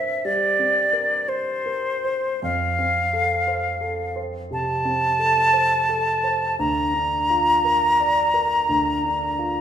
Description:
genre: classical, romantic duo for flute and grand piano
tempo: 58 BPM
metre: 4/4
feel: rubato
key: F major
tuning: A4 = 441 Hz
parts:
  - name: bright concert flute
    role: melody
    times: 0.0-9.6 s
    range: C5 to Bb5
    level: -19 LUFS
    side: equal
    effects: none
  - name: warm concert grand piano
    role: accompaniment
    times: 0.0-9.6 s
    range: D2 to D5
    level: -27 LUFS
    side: right 2 dB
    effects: none
room: moderate recital hall reverb, RT60 1.6 s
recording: minimal, uncompressed stereo recording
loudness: -19 LUFS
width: side -9 dB against mid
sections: 0.0-9.6 A section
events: none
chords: 0.0 C7(no3)/G; 2.4 F; 6.6 Bb/D

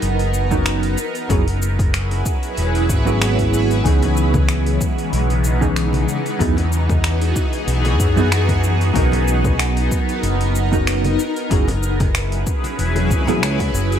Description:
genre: sunset chillout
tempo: 94 BPM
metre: 4/4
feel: swing 54% on 16ths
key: unclear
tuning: A4 = 441 Hz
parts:
  - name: vintage hollow-body jazz guitar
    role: accompaniment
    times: 0.0-13.4 s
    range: E3 to A#4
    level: -22 LUFS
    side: moving between left 6 dB and right 5 dB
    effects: auto-pan, ping-pong delay
  - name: shimmering ambient pad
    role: sustained chords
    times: 0.0-14.0 s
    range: C#3 to B4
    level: -22 LUFS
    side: equal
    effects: chorus, built-in reverb, phaser
  - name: fingered electric bass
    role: bass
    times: 0.0-14.0 s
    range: E1 to F#2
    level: -19 LUFS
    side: equal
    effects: none
  - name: deep house drum kit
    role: drums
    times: 0.0-14.0 s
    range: cabasa, finger snaps, hi-hat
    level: -27 LUFS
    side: equal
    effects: overdrive, studio reverb
  - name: electronic kick drum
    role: drums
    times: 0.5-13.7 s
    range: none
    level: -21 LUFS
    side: equal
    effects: overdrive, studio reverb
  - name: congas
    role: percussion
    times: 4.0-13.7 s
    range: none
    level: -26 LUFS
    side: left 2 dB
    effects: none
room: digital ambience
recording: none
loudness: -16 LUFS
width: side -9 dB against mid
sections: 0.0-14.0 A section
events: none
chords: 0.0 Bmaj9; 1.0 F#7sus4; 3.9 C#m9; 6.1 Emaj9; 9.0 Bmaj9; 11.2 F#7sus4

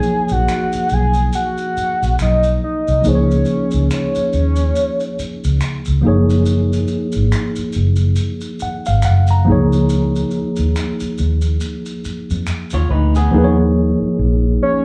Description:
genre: R&B, neo-soul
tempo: 70 BPM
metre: 4/4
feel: swing 60% on 16ths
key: unclear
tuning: A4 = 440 Hz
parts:
  - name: soft octave-layered synth lead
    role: melody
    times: 0.0-5.6, 14.6-14.8 s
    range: C#5 to G#5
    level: -21 LUFS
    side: equal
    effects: chorus, phaser
  - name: tine electric piano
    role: accompaniment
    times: 0.0-14.8 s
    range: E#3 to A#5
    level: -22 LUFS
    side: equal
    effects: overdrive
  - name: maracas and finger snaps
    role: percussion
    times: 0.0-13.3 s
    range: none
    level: -35 LUFS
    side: equal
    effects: none
  - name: vintage muted fingered electric bass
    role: bass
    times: 0.3-14.6 s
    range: F#1 to E#2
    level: -19 LUFS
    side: equal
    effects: none
  - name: electric guitar through a small old amp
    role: second line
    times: 12.7-13.6 s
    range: B3 to C#5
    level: -26 LUFS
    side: equal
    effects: none
room: wet large studio reverb, RT60 0.8 s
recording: band playing live in one room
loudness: -17 LUFS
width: mono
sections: 0.0-13.3 A section; 13.3-14.8 B section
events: none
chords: 0.0 Bmaj9; 3.0 C#add9; 6.0 F#maj7; 9.5 C#add9; 13.3 D#sus2

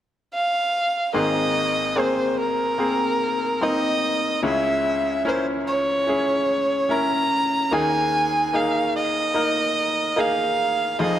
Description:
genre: pop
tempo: 73 BPM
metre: 4/4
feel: straight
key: Ab major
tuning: A4 = 440 Hz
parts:
  - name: warm violin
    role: melody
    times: 0.3-11.2 s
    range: Bb4 to Bb5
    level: -22 LUFS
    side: right 1 dB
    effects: none
  - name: bright grand piano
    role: accompaniment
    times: 1.1-11.2 s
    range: F1 to Bb4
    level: -23 LUFS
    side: left 1 dB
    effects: none
room: moderate concert hall reverb, RT60 1.9 s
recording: none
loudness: -19 LUFS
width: side -11 dB against mid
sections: 0.0-1.1 A section; 1.1-11.2 B section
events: none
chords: 0.0 N.C.; 1.1 Abadd9; 4.4 Dbm; 7.7 Ebsus4

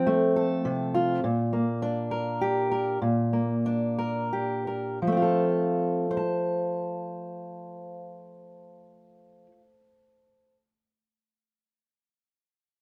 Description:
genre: folk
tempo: 55-69 BPM (dotted quarters)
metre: 6/8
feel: straight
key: F major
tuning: A4 = 440 Hz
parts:
  - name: fingerpicked steel-string acoustic guitar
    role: solo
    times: 0.0-10.6 s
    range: Bb2 to A5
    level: -28 LUFS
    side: equal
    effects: none
room: moderate stone room reverb, RT60 1.0 s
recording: band playing live in one room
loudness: -27 LUFS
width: mono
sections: 0.0-1.2 A section; 1.2-5.0 B section; 5.0-9.4 C section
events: slowing down 1.2-5.0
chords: 0.0 F; 1.2 Bb6; 5.0 F

